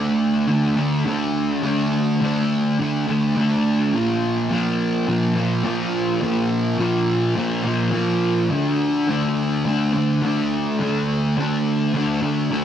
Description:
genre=rock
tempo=105 BPM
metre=4/4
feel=straight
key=D minor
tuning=A4 = 440 Hz
part: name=fuzz guitar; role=solo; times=0.0-12.6 s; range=Bb2 to D4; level=-18 LUFS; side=equal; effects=distortion, lush chorus
room=moderate plate reverb, RT60 3.7 s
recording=dark, warm production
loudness=-18 LUFS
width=side -9 dB against mid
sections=0.0-12.6 A section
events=none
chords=0.0 D5; 3.9 Bb5; 8.5 D5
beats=0.49 1.07 | 1.64 2.21 2.79 3.36 | 3.94 4.51 5.08 5.65 | 6.22 6.80 7.37 7.94 | 8.51 9.09 9.66 10.23 | 10.80 11.37 11.94 12.51

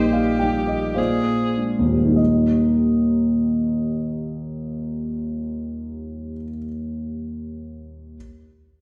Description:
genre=classical, romantic duo for viola and grand piano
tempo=49 BPM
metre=3/4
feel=rubato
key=Eb major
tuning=A4 = 440 Hz
part: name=rich viola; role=melody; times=0.0-1.6 s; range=G4 to Ab4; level=-30 LUFS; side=equal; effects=none
part: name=dark concert grand piano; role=accompaniment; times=0.0-8.2 s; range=Bb1 to G5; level=-23 LUFS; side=equal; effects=none
room=wet recital hall reverb, RT60 1.5 s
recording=recorded in a church or concert hall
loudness=-22 LUFS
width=mono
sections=0.0-2.2 A section; 2.2-5.9 B section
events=slowing down 0.0-2.2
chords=0.0 Eb/Bb; 1.0 Bb9; 2.2 Eb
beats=0.97 | 2.18 3.40 4.62

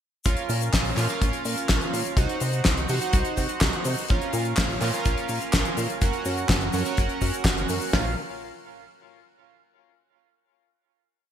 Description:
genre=italo disco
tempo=125 BPM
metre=4/4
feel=straight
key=Bb minor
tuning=A4 = 438 Hz
part: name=damped 70s drum kit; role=drums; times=0.2-7.9 s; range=cabasa, handclaps, hi-hat, snare drum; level=-27 LUFS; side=left 2 dB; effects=gated reverb
part: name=chorused polysynth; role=stabs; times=0.3-8.1 s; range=Db4 to Gb5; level=-28 LUFS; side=right 4 dB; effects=ping-pong delay
part: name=chorused synth bass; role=bass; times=0.3-8.2 s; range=Gb1 to C3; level=-29 LUFS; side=equal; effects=none
part: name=damped 70s drum kit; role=drums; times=0.3-8.0 s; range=kick drum, ride cymbal, snare drum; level=-24 LUFS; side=equal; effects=gated reverb
room=moderate lush hall reverb, RT60 1.9 s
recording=bright 1980s-style digital production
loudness=-22 LUFS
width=side -9 dB against mid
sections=0.3-7.9 chorus; 7.9-9.9 final chord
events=none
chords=0.3 Bbm; 2.2 Cdim; 4.1 Bbm; 6.0 Gb; 7.9 Bbm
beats=| 0.25 0.73 1.21 1.69 | 2.17 2.65 3.13 3.61 | 4.09 4.57 5.05 5.53 | 6.01 6.49 6.97 7.45 | 7.93

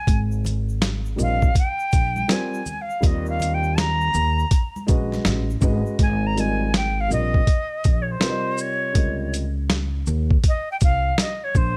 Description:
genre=hip hop, jazz-hop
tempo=81 BPM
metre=4/4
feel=swing 65% on 16ths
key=Ab major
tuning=A4 = 440 Hz
part: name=jazz flute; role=melody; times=0.0-11.8 s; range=C5 to Bb5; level=-27 LUFS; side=equal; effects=none
part: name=upright bass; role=bass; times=0.1-11.7 s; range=Ab1 to Eb2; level=-26 LUFS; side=equal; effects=none
part: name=boom bap sampler-style drum kit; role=drums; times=0.1-11.8 s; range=hi-hat, kick drum, shaker, snare drum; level=-22 LUFS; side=equal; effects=none
part: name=tube shaker and congas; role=percussion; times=0.1-6.0 s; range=none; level=-39 LUFS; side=equal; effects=none
part: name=dark grand piano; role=accompaniment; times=1.2-9.4 s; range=C3 to Eb5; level=-30 LUFS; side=equal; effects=none
room=little or no reverb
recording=none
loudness=-22 LUFS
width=mono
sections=0.0-6.0 A section; 6.0-11.8 A section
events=flute solo 0.0-6.0, 6.0-11.8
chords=0.1 Abmaj9; 3.0 Eb7; 5.3 Amaj9; 6.0 Abmaj9; 9.0 Dbmaj9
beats=| 0.07 0.81 1.55 2.29 | 3.03 3.77 4.51 5.25 | 6.00 6.74 7.48 8.22 | 8.96 9.70 10.44 11.18

